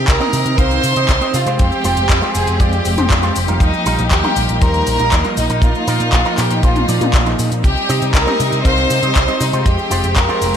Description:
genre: italo disco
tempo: 119 BPM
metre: 4/4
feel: straight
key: C minor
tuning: A4 = 444 Hz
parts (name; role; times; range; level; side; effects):
- warm chamber violin section; melody; 0.0-10.6 s; Eb4 to C6; -18 LUFS; equal; ping-pong delay, shimmer reverb
- clear studio string section; sustained chords; 0.0-10.6 s; Eb3 to G4; -22 LUFS; equal; shimmer reverb
- picked electric bass with an envelope filter; bass; 0.0-10.6 s; F1 to C3; -19 LUFS; equal; none
- house drum kit; drums; 0.1-10.6 s; cabasa, handclaps, hi-hat, toms; -21 LUFS; left 1 dB; overdrive, gated reverb
- kick drum; drums; 0.1-10.3 s; none; -15 LUFS; equal; none
- electric guitar with an envelope filter; stabs; 0.2-10.6 s; F3 to F5; -22 LUFS; right 3 dB; shimmer reverb
room: moderate lush hall reverb, RT60 2.0 s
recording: bright 1980s-style digital production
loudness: -12 LUFS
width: side -8 dB against mid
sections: 0.0-10.6 A section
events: none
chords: 0.0 Cm; 1.6 Fmadd9; 3.6 Ebadd9; 5.6 Bbsus4; 7.6 Cm; 9.7 Fmadd9

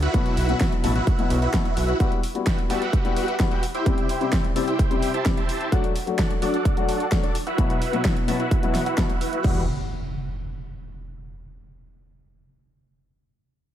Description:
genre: EDM, festival progressive house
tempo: 129 BPM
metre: 4/4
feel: straight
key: E minor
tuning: A4 = 440 Hz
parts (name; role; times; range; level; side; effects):
- big supersaw lead; riff; 0.0-9.6 s; D4 to A5; -27 LUFS; right 2 dB; phaser, sidechain pumping, low-pass filter, ping-pong delay
- fat analog bass; bass; 0.0-1.9, 9.4-9.7 s; A1 to E2; -23 LUFS; equal; sidechain pumping
- big-room dance drum kit; drums; 0.0-9.5 s; crash cymbal, hi-hat, snare drum; -31 LUFS; equal; overdrive
- felt-muted upright piano; accompaniment; 0.1-9.6 s; B2 to G4; -27 LUFS; left 5 dB; sidechain pumping, ping-pong delay
- electronic kick drum; drums; 0.1-9.5 s; none; -23 LUFS; right 1 dB; none
- impact; sound effects; 9.4-11.3 s; none; -32 LUFS; right 1 dB; none
room: light reverb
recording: none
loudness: -20 LUFS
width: side -11 dB against mid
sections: 0.0-9.4 A section; 9.4-11.3 B section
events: none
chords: 0.1 Bsus4; 2.0 Emadd9; 3.9 C; 5.7 D; 7.6 Bsus4; 9.4 Emadd9

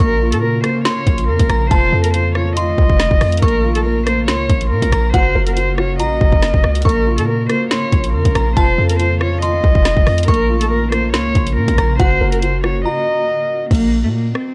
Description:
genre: hip hop, drill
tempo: 140 BPM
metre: 4/4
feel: half-time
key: Bb harmonic minor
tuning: A4 = 437 Hz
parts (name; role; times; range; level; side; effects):
- warm cello; melody; 0.0-14.5 s; A3 to Eb5; -21 LUFS; equal; low-pass filter
- glassy synth bell; second line; 0.0-13.3 s; Gb5 to Db6; -28 LUFS; equal; chorus, tremolo, tape echo
- dark concert grand piano; accompaniment; 0.0-13.7 s; Bb3 to Bb4; -25 LUFS; equal; low-pass filter
- granular cloud pad; sustained chords; 0.0-13.7 s; Db3 to Gb4; -29 LUFS; equal; built-in reverb
- hard-hitting 808-style bass; bass; 0.0-14.3 s; F1 to Bb2; -20 LUFS; equal; none
- drill drum kit; drums; 0.0-14.5 s; crash cymbal, hi-hat, kick drum, rim click, snare drum; -19 LUFS; equal; none
room: digital ambience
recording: dark, warm production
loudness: -15 LUFS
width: mono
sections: 0.0-13.7 A section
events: break 12.9-13.7; hi-hats muted 13.7-14.5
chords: 0.0 Bbm; 1.7 F7; 3.4 Bbm; 5.1 Gb; 6.9 Bbm; 8.6 F7; 10.3 Bbm; 12.0 Gb; 13.7 N.C.

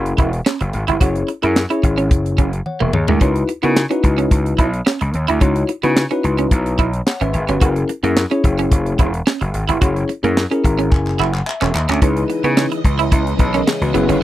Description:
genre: early-eighties boogie funk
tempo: 109 BPM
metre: 4/4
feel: straight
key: C# dorian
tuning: A4 = 439 Hz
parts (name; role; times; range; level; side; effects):
- bell-like tine electric piano; accompaniment; 0.0-14.2 s; C#4 to A#5; -20 LUFS; left 4 dB; none
- gritty slap bass; bass; 0.0-14.2 s; E1 to C#3; -19 LUFS; equal; overdrive
- tight funk drum kit; drums; 0.1-14.2 s; handclaps, hi-hat, kick drum, snare drum, toms; -16 LUFS; equal; none
- electric guitar at the edge of break-up; riff; 0.2-14.2 s; G#3 to F#4; -21 LUFS; right 8 dB; analog chorus
- phased string machine; sustained chords; 12.0-14.2 s; C#3 to D#5; -24 LUFS; right 1 dB; ensemble chorus, phaser
room: little or no reverb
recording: dry, close 1970s-style studio recording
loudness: -14 LUFS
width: side -14 dB against mid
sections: 0.0-12.0 A section; 12.0-14.2 B section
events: drum fill 2.7-3.2, 10.9-12.0; tine electric piano fill 10.4-12.0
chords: 0.0 F#9; 3.2 C#m11; 7.6 F#9; 12.0 C#m9

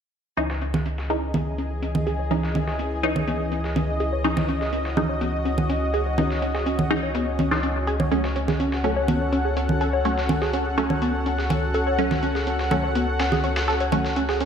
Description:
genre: melodic techno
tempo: 124 BPM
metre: 4/4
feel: straight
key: C# minor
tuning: A4 = 440 Hz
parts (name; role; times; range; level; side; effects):
- lush unison pad; sustained chords; 0.9-14.5 s; E3 to F#5; -27 LUFS; left 1 dB; chorus
- tight sequenced synth; arpeggios; 0.4-14.5 s; B3 to C#5; -28 LUFS; equal; chorus, ping-pong delay
- filtered dub chord stab; stabs; 0.4-14.5 s; E3 to D#4; -28 LUFS; equal; phaser, ping-pong delay
- dark detuned saw bass; bass; 0.4-14.5 s; C#2; -28 LUFS; equal; none
- breakbeat sampler-style drum kit; drums; 0.4-14.5 s; hi-hat, snare drum; -35 LUFS; equal; overdrive, high-pass filter on hats, low-pass filter on hats, studio ambience, high-pass filter on snare, low-pass filter on snare, high-pass filter on room, low-pass filter on room, gated reverb
- congas; drums; 0.7-14.0 s; none; -26 LUFS; right 3 dB; studio ambience
room: moderate plate reverb, RT60 1.9 s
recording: bright 1980s-style digital production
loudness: -21 LUFS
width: side -7 dB against mid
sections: 0.4-14.5 A section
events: filter sweep on synth arpeggio sound 0.4-14.5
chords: 0.4 C#madd9; 8.1 F#m/C#

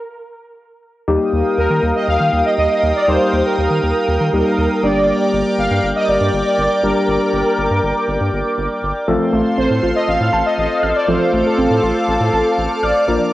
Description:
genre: synth-pop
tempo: 120 BPM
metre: 4/4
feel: straight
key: unclear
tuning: A4 = 441 Hz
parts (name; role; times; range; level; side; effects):
- analog synth brass; melody; 0.0-13.3 s; A4 to F5; -18 LUFS; equal; chorus, cassette tape, analog delay
- tine electric piano; accompaniment; 1.1-13.3 s; G3 to Bb4; -19 LUFS; left 2 dB; lush chorus, cassette tape
- chorused pulse-width pad; sustained chords; 1.1-13.3 s; A4 to Eb6; -21 LUFS; right 1 dB; cassette tape
- round analog bass; bass; 1.1-13.2 s; G1 to Eb3; -21 LUFS; equal; none
- warbly dusty pluck; arpeggios; 9.1-13.2 s; F3 to F6; -22 LUFS; right 2 dB; chorus, cassette tape, analog delay
room: wet spring reverb, RT60 1.2 s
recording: home recording on cassette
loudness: -14 LUFS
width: side -15 dB against mid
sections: 0.0-1.1 A section; 1.1-13.3 B section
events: stop 0.0-1.1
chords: 0.0 N.C.; 1.1 Ebadd9; 4.8 Gm; 9.1 F/A

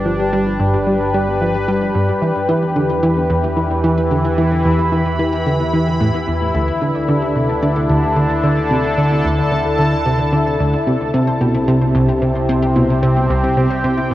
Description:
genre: ambient, sequencer-driven space music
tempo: 111 BPM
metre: 4/4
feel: straight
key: unclear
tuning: A4 = 440 Hz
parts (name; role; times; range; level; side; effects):
- sweeping resonant pad; sustained chords; 0.0-14.1 s; C3 to B5; -17 LUFS; equal; chorus
- wide unison pluck; arpeggios; 0.0-14.1 s; B3 to D5; -31 LUFS; left 1 dB; none
- analog drone; bass; 0.0-14.1 s; G1 to E2; -25 LUFS; equal; chorus, transformer saturation
- plucky analog bass; riff; 0.1-14.1 s; C2 to G3; -17 LUFS; equal; lush chorus, ping-pong delay
room: wet huge ambient reverb, RT60 9.7 s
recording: worn, warbling old tape, cassette tape, warbly pitch drift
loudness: -14 LUFS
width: side -14 dB against mid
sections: 0.0-14.1 A section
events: none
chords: 0.0 G; 2.2 Em; 6.5 Dsus2; 10.9 C

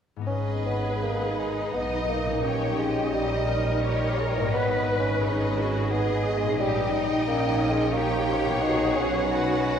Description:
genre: classical, slow romantic movement for symphony orchestra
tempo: 87 BPM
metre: 3/4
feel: rubato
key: G# minor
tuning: A4 = 440 Hz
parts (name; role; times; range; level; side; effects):
- concert harp; arpeggios; 0.2-9.8 s; G#2 to D#5; -32 LUFS; left 5 dB; none
- warm symphonic violin section; melody; 0.3-9.8 s; D#5 to G5; -35 LUFS; left 3 dB; none
- warm symphonic violin section; second line; 0.3-9.8 s; B4 to D#5; -32 LUFS; left 1 dB; none
- warm bassoon; accompaniment; 0.3-9.8 s; E3 to D#4; -28 LUFS; right 2 dB; none
- warm symphonic viola section; accompaniment; 0.3-9.8 s; C#4 to B4; -33 LUFS; equal; none
- mellow French horn section; sustained chords; 0.3-9.8 s; D#4 to C#5; -33 LUFS; left 1 dB; none
- clear chamber double bass section; bass; 0.3-9.8 s; G#1 to B1; -31 LUFS; right 2 dB; none
- warm symphonic cello section; bass; 1.0-9.8 s; C#4 to B4; -32 LUFS; right 1 dB; none
room: wet church reverb, RT60 3.6 s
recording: none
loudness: -23 LUFS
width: side -8 dB against mid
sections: 0.3-9.8 A section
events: none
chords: 0.3 G#m; 2.4 D#7/A#; 4.5 G#m; 6.6 D#7/A#; 8.6 B

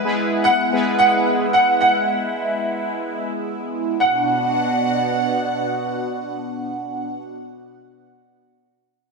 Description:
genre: pop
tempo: free time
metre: none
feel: none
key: B dorian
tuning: A4 = 440 Hz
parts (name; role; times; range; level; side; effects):
- warm grand piano; melody; 0.0-7.2 s; B4 to F#5; -18 LUFS; right 1 dB; ensemble chorus, digital delay
- analog synth brass; accompaniment; 0.0-1.5 s; G#3 to B4; -22 LUFS; equal; chorus
- phased analog pad; sustained chords; 0.0-7.2 s; B2 to F#5; -22 LUFS; right 1 dB; phaser, chorus, tremolo
room: wet lush hall reverb, RT60 1.9 s, digital ambience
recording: bright 1980s-style digital production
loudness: -18 LUFS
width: side -3 dB against mid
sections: 0.0-4.0 A section; 4.0-8.4 B section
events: none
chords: 0.0 E; 4.0 Bm

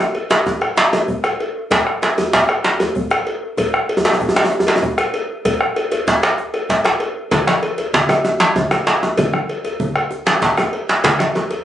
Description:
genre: west african traditional, West African drum ensemble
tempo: 128 BPM (dotted quarters)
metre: 12/8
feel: straight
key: none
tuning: none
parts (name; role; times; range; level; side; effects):
- cowbell; percussion; 0.1-11.6 s; none; -22 LUFS; left 1 dB; none
- djembe; percussion; 0.3-11.6 s; none; -34 LUFS; left 4 dB; none
- djembe; percussion; 0.3-11.5 s; none; -15 LUFS; right 1 dB; none
- bombo; percussion; 0.5-11.3 s; none; -21 LUFS; left 1 dB; none
- congas; percussion; 7.3-11.3 s; none; -24 LUFS; right 1 dB; none
room: moderate small room reverb, RT60 0.5 s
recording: recorded on a phone in the room, studio reverb, nothing above 10.4 kHz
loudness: -15 LUFS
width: side -11 dB against mid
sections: 0.0-11.6 A section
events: none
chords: none

